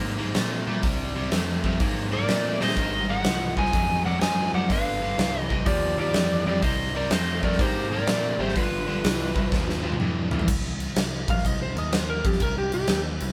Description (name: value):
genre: blues rock power trio and southern rock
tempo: 124 BPM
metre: 4/4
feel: swing 66% on 8ths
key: C minor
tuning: A4 = 440 Hz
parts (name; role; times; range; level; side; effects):
- cranked stack guitar; riff; 0.0-10.5 s; G2 to Bb3; -32 LUFS; equal; overdrive
- picked electric bass; bass; 0.0-13.3 s; G1 to Bb2; -32 LUFS; equal; none
- huge arena drum kit; drums; 0.3-13.3 s; crash cymbal, hi-hat, kick drum, snare drum, toms; -29 LUFS; equal; none
- overdriven slide guitar; melody; 2.1-10.0 s; B4 to Ab5; -30 LUFS; equal; none
- lightly driven lead guitar; second line; 2.1-13.0 s; F4 to F5; -35 LUFS; equal; none
room: light reverb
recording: band playing live in one room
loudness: -25 LUFS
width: mono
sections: 0.0-10.5 A section; 10.5-13.3 B section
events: drum fill 2.5, 9.5-10.5; lead electric guitar solo 10.5-13.3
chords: 0.0 C7(no3); 2.8 Ab7; 4.7 G7; 6.6 C5; 8.6 G7; 10.5 Cm